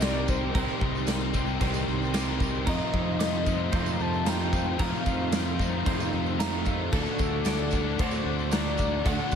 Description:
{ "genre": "rock, shoegaze and dream pop", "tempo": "113 BPM", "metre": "4/4", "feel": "straight", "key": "unclear", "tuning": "A4 = 439 Hz", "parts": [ { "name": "soft octave-layered synth lead", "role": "melody", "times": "0.0-9.4 s", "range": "A4 to Bb5", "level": "-34 LUFS", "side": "left 4 dB", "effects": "chorus, digital delay" }, { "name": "hollow soft pad", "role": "sustained chords", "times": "0.0-9.4 s", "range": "A3 to D6", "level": "-38 LUFS", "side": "right 1 dB", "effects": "chorus" }, { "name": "twelve-string electric guitar", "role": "arpeggios", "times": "0.0-9.4 s", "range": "A4 to D6", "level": "-39 LUFS", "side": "right 6 dB", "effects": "wide subtle chorus, digital delay" }, { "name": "biting overdriven guitar", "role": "riff", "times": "0.0-9.4 s", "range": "F2 to Eb4", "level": "-33 LUFS", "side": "left 12 dB", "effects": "analog chorus" }, { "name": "crunchy overdriven guitar", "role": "riff", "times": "0.0-9.4 s", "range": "F2 to D4", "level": "-34 LUFS", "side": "equal", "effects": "none" }, { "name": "overdriven electric guitar", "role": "riff", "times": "0.0-9.4 s", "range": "F2 to G4", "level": "-34 LUFS", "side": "right 13 dB", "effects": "reverse reverb" }, { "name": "modern bright fingered electric bass", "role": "bass", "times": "0.0-9.4 s", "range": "C2 to F2", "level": "-31 LUFS", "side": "equal", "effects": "none" }, { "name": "big rock drum kit", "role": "drums", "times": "0.0-9.4 s", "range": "crash cymbal, kick drum, snare drum", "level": "-30 LUFS", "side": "equal", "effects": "none" }, { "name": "tambourine", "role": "percussion", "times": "0.0-9.4 s", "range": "none", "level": "-45 LUFS", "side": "right 15 dB", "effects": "none" } ], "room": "light reverb, studio reverb", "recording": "lossy compression artefacts", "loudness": "-24 LUFS", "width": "side -7 dB against mid", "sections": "0.0-9.4 A section", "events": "none", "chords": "0.0 Cm7; 2.7 F7sus4; 6.9 D" }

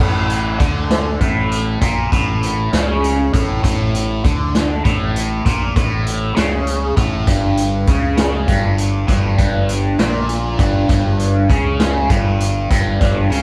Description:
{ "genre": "psychedelic rock", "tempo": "66 BPM (dotted quarters)", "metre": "6/8", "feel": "straight", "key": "unclear", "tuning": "A4 = 438 Hz", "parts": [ { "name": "biting overdriven guitar", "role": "riff", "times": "0.0-13.4 s", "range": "G2 to D3", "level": "-21 LUFS", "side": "equal", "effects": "phaser" }, { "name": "growling fingered electric bass", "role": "bass", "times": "0.0-13.4 s", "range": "G1 to D2", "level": "-22 LUFS", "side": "equal", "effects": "overdrive" }, { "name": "vintage drum kit", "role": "drums", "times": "0.3-13.4 s", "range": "hi-hat, kick drum, snare drum", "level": "-20 LUFS", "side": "equal", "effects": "none" } ], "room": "moderate stone room reverb, RT60 1.3 s", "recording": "band playing live in one room", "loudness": "-17 LUFS", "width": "mono", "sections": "0.0-13.4 A section", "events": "none", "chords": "0.0 Asus4; 7.3 G5" }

